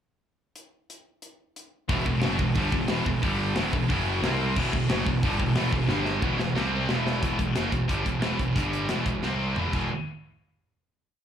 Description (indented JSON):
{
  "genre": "heavy metal",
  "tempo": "180 BPM",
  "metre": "4/4",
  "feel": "straight",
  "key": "E minor",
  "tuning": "A4 = 442 Hz",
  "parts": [
    { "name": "tight metal drum kit", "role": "drums", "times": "0.6-9.8 s", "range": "crash cymbal, hi-hat, kick drum, snare drum, toms", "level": "-30 LUFS", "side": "equal", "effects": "none" },
    { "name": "distorted electric guitar", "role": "riff", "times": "1.9-7.2 s", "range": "E2 to C4", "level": "-32 LUFS", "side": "equal", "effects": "none" },
    { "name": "heavy high-gain guitar", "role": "riff", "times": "1.9-9.9 s", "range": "E2 to C4", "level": "-31 LUFS", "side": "left 11 dB", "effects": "distortion, slapback echo" },
    { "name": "scooped high-gain guitar", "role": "riff", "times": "1.9-9.9 s", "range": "E2 to C4", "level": "-30 LUFS", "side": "right 8 dB", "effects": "distortion, slapback echo" },
    { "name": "fuzz picked electric bass", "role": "bass", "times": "1.9-9.9 s", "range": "E1 to C2", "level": "-29 LUFS", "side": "left 1 dB", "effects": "overdrive" }
  ],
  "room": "light reverb",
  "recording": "live gig heard through the venue's PA, club ambience",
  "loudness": "-23 LUFS",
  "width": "side -9 dB against mid",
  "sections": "0.6-1.9 pickup bar; 1.9-7.2 riff; 7.2-9.9 outro; 9.9-11.2 final hit",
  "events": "drum fill 5.9-7.2, 9.2-9.9",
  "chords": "0.6 N.C.; 1.9 Em; 3.2 G5; 3.6 E5; 3.9 F#5; 4.2 C5; 4.6 Em; 5.9 G5; 6.2 E5; 6.5 C5; 6.9 E5; 7.2 Em; 8.6 G5; 8.9 E5; 9.2 C5; 9.6 E5; 9.9 N.C."
}